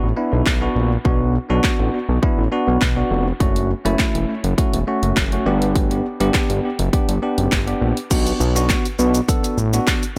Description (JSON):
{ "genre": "dance-pop", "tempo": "102 BPM", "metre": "4/4", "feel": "straight", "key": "B minor", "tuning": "A4 = 440 Hz", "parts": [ { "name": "bell-like tine electric piano", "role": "accompaniment", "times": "0.0-10.0 s", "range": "A3 to A4", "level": "-24 LUFS", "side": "equal", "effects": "sidechain pumping, tape echo" }, { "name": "fat analog bass", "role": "bass", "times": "0.0-9.8 s", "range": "E1 to B1", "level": "-22 LUFS", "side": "equal", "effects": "sidechain pumping" }, { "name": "house drum kit", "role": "drums", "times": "0.5-10.2 s", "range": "crash cymbal, handclaps, hi-hat, kick drum, shaker, snare drum", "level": "-23 LUFS", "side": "equal", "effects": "none" } ], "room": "light reverb", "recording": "echo-heavy mix", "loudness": "-19 LUFS", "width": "mono", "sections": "0.0-8.1 A section; 8.1-10.2 B section", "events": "none", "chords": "0.0 Bm; 3.4 F#m; 5.5 G; 8.1 Bm" }